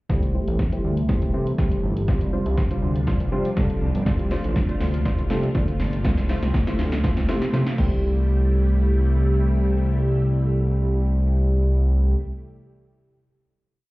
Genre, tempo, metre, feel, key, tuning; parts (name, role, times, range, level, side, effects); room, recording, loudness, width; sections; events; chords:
dance-pop; 121 BPM; 4/4; straight; C major; A4 = 441 Hz
wavetable chord stab; accompaniment; 0.1-12.2 s; G3 to C5; -30 LUFS; equal; sidechain pumping, low-pass filter
string machine, full ensemble; sustained chords; 0.1-12.2 s; C3 to G4; -29 LUFS; equal; phaser, ensemble chorus, sidechain pumping, low-pass filter
fat analog bass; bass; 0.1-12.2 s; G1 to C3; -21 LUFS; equal; sidechain pumping
punchy analog drum machine; drums; 0.1-7.9 s; crash cymbal, hi-hat, kick drum, shaker, snare drum; -23 LUFS; equal
light reverb; heard muffled through a wall, club reverb, EQ; -19 LUFS; side -20 dB against mid
0.1-8.0 build; 8.0-12.0 final hit
build-up 0.1-8.0; drum fill 0.1-8.0; filter sweep 0.1-8.0
0.1 C6; 2.1 G7sus4/C; 6.0 Fmaj7/C; 7.8 C6